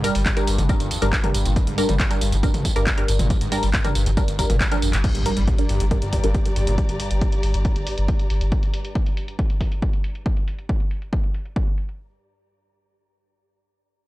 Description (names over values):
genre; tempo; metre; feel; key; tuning
driving peak-time techno; 138 BPM; 4/4; straight; G phrygian; A4 = 440 Hz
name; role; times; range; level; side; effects
screaming distorted acid line; riff; 0.0-6.8 s; G1 to G3; -29 LUFS; equal; distortion, ensemble chorus, sidechain pumping, analog delay
filtered dub chord stab; stabs; 0.0-7.0 s; G3 to Bb4; -26 LUFS; right 1 dB; phaser, sidechain pumping, analog delay
warm sub bass; bass; 0.0-8.5 s; G1; -22 LUFS; equal; tube saturation, sidechain pumping, low-pass filter
analog drone; drone; 0.0-8.6 s; G2; -33 LUFS; left 1 dB; chorus, sidechain pumping
punchy analog drum machine; drums; 0.0-12.0 s; crash cymbal, handclaps, hi-hat, tambourine, toms; -28 LUFS; equal; sidechain pumping on hats, low-pass filter on hats, sidechain pumping on perc, low-pass filter on perc, sidechain pumping on toms, low-pass filter on toms, low-pass filter on snare, sidechain pumping on cymbals, low-pass filter on cymbals, low-pass filter on room
electronic kick drum; drums; 0.3-11.7 s; none; -22 LUFS; equal; none
impact; sound effects; 5.0-6.8 s; none; -31 LUFS; equal; none
warm studio string section; texture; 5.0-10.3 s; G4 to Bb5; -32 LUFS; left 1 dB; sidechain pumping
room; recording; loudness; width
little or no reverb; dry, gritty hardware recording; -19 LUFS; side -17 dB against mid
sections
0.0-5.0 A section; 5.0-12.0 B section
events
drop 0.0-5.0; fade-out on string section 5.0-10.3; impact 5.0-6.8; filter sweep on synth stab 5.0-6.8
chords
0.0 Gm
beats
0.26 0.69 1.13 | 1.56 2.00 2.43 2.87 | 3.30 3.74 4.17 4.61 | 5.04 5.47 5.91 6.34 | 6.78 7.21 7.65 8.08 | 8.52 8.95 9.39 9.82 | 10.26 10.69 11.13 11.56